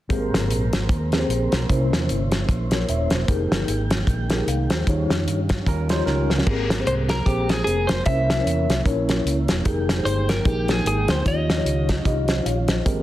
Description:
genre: uptempo gospel.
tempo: 151 BPM.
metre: 4/4.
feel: swing 58% on 8ths.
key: Ab major.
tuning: A4 = 442 Hz.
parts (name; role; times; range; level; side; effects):
mellow tine electric piano; accompaniment; 0.1-13.0 s; Ab2 to F5; -26 LUFS; left 2 dB; medium stereo tremolo.
percussive tonewheel organ; sustained chords; 0.1-13.0 s; Eb3 to G5; -30 LUFS; right 3 dB; slow rotary speaker, overdrive.
fingered electric bass; bass; 0.1-13.0 s; Eb1 to G2; -24 LUFS; equal; none.
warm soul drum kit; drums; 0.1-13.0 s; crash cymbal, hi-hat, kick drum, snare drum; -23 LUFS; equal; none.
direct-recorded clean electric guitar; second line; 5.7-6.4 s; Db4 to C5; -31 LUFS; right 7 dB; spring reverb.
clean electric guitar; melody; 6.9-12.0 s; G4 to E5; -25 LUFS; equal; none.
room: light reverb, small room ambience.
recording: dense, heavily limited modern master.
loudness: -19 LUFS.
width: side -14 dB against mid.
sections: 0.1-6.5 A section; 6.5-13.0 B section.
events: drum fill 6.1-6.5.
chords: 0.1 Abmaj9; 1.7 C7b9; 3.3 Fm11; 4.9 Eb9; 6.5 Abmaj9; 8.1 C7b9; 9.7 Fm11; 11.3 Eb9.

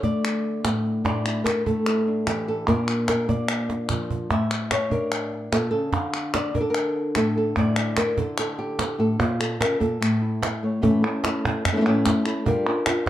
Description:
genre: flamenco.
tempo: 147 BPM.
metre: 4/4.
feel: straight.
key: A phrygian dominant.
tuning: A4 = 441 Hz.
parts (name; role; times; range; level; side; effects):
flamenco guitar; melody; 0.0-13.1 s; A2 to F5; -22 LUFS; equal; none.
cajon; percussion; 0.0-13.1 s; none; -28 LUFS; right 4 dB; none.
palmas hand claps; percussion; 0.2-13.1 s; none; -28 LUFS; left 1 dB; none.
room: moderate stone room reverb, RT60 1.0 s.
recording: dark, warm production.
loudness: -21 LUFS.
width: side -12 dB against mid.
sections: 0.0-10.8 A section; 10.8-13.1 B section.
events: drum fill 3.7-4.3.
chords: 0.0 D5; 1.1 Asus4; 2.7 Bb; 4.3 Asus4; 5.9 Dm; 7.6 Asus4; 9.2 Bb5; 10.0 A; 12.5 Gm7.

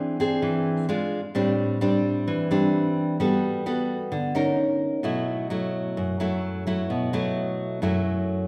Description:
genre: bossa nova.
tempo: 130 BPM.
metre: 4/4.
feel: straight.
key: unclear.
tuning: A4 = 441 Hz.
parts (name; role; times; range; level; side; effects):
nylon-string guitar; solo; 0.0-8.5 s; F#2 to Bb4; -25 LUFS; equal; none.
room: wet recital hall reverb, RT60 1.5 s.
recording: recorded in a church or concert hall.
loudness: -25 LUFS.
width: mono.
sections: 0.0-5.0 A section; 5.0-8.5 B section.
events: none.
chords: 0.0 Eaug7; 0.9 Ddim/Ab; 1.4 Am7; 3.2 Gmaj9; 4.6 Bbmadd11/Db; 5.0 B7sus4.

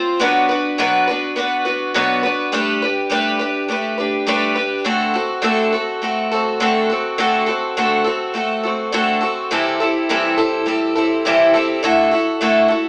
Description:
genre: rock.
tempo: 103 BPM.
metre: 4/4.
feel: straight.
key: D mixolydian.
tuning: A4 = 440 Hz.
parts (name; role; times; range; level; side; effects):
picked twelve-string acoustic guitar; solo; 0.0-12.9 s; B2 to C5; -18 LUFS; equal; none.
room: wet studio reverb, RT60 0.6 s.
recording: band playing live in one room, AM radio sound.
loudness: -18 LUFS.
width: mono.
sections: 0.0-12.9 A section.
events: none.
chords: 0.2 Bm; 2.5 Gadd9; 4.9 D7; 9.5 C6; 11.8 Dadd9.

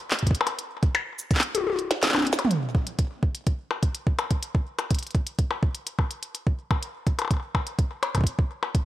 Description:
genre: IDM.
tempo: 125 BPM.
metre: 4/4.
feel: straight.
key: none.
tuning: none.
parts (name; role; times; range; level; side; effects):
glitchy drum kit; drums; 0.1-8.8 s; handclaps, hi-hat, percussion blips, shaker, snare drum, toms; -26 LUFS; left 1 dB; none.
electronic kick drum; drums; 0.2-8.8 s; none; -23 LUFS; equal; none.
room: digital ambience.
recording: none.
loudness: -24 LUFS.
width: side -14 dB against mid.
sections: 0.0-2.5 A section; 2.5-8.8 B section.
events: drum fill 1.5-2.5; kick drops out 2.0-2.5.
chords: none.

